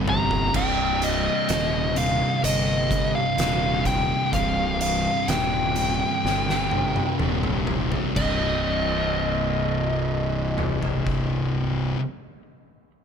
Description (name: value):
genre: stoner and doom metal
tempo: 63 BPM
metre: 4/4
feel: straight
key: C minor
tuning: A4 = 440 Hz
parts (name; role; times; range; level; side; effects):
- thick fuzz guitar; riff; 0.0-12.0 s; C2 to C3; -28 LUFS; left 10 dB; distortion
- thick fuzz guitar; riff; 0.0-12.0 s; C2 to C3; -28 LUFS; right 9 dB; distortion
- fuzz fingered electric bass; bass; 0.0-11.9 s; C1 to G1; -28 LUFS; equal; overdrive
- fuzz lead guitar; melody; 0.1-11.9 s; Eb5 to Bb5; -26 LUFS; left 1 dB; distortion, ping-pong delay
- oversized low-tuned drum kit; drums; 0.1-11.3 s; crash cymbal, hi-hat, kick drum, snare drum, toms; -28 LUFS; right 1 dB; none
room: light reverb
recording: none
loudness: -21 LUFS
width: side -7 dB against mid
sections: 0.5-8.2 A section; 8.2-12.0 B section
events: drum fill 0.0-0.5, 6.2-8.2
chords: 0.0 C5; 0.5 Cm